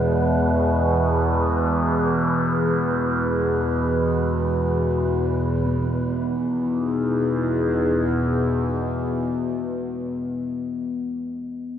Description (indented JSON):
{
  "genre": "dark ambient drone",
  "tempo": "free time",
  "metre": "none",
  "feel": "none",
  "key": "E major",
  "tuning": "A4 = 441 Hz",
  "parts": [
    { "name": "dark analog pad", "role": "sustained chords", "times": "0.0-10.6 s", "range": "E3 to B4", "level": "-25 LUFS", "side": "right 1 dB", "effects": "chorus, phaser" },
    { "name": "bronze singing bowl", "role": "arpeggios", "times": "0.0-10.2 s", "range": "G#3 to B3", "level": "-28 LUFS", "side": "left 5 dB", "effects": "analog delay" },
    { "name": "overtone-sweeping drone", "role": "drone", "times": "0.0-10.2 s", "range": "E2 to B2", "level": "-23 LUFS", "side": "right 1 dB", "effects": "chorus, built-in reverb" },
    { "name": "wind-like tuned noise texture", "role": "texture", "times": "0.0-5.7 s", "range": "B4", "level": "-31 LUFS", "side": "right 2 dB", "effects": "built-in reverb" }
  ],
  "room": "wet lush hall reverb, RT60 2.7 s",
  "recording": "dreamy mix soaked in reverb",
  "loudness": "-20 LUFS",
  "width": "side -9 dB against mid",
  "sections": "0.0-5.7 A section; 5.7-9.8 B section",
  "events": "none",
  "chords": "0.0 E5",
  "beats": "free time"
}